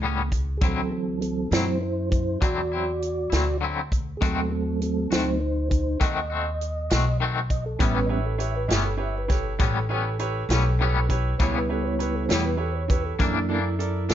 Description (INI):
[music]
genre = slow blues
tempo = 67 BPM (dotted quarters)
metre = 12/8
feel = straight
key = A mixolydian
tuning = A4 = 437 Hz
[part]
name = twangy electric guitar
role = accompaniment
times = 0.0-14.1 s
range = F#2 to F#4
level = -28 LUFS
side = left 5 dB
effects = tremolo
[part]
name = mellow tonewheel organ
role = sustained chords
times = 0.0-14.1 s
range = E3 to E5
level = -28 LUFS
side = right 2 dB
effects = fast rotary speaker
[part]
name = upright bass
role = bass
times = 0.0-14.1 s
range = G1 to A#2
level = -27 LUFS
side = equal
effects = none
[part]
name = natural country drum kit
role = drums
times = 0.3-14.1 s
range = hi-hat, kick drum, snare drum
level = -25 LUFS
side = equal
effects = none
[part]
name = bright upright piano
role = accompaniment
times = 7.8-14.1 s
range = E4 to D5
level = -30 LUFS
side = right 4 dB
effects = none
[sound]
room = light reverb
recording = nothing above 7.5 kHz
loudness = -22 LUFS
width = side -10 dB against mid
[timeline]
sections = 0.0-14.1 A section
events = tonewheel organ solo 0.0-14.1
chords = 0.0 A9; 0.6 D9; 4.2 D#dim7; 7.8 A9; 11.4 C#m7b5; 13.2 F#7alt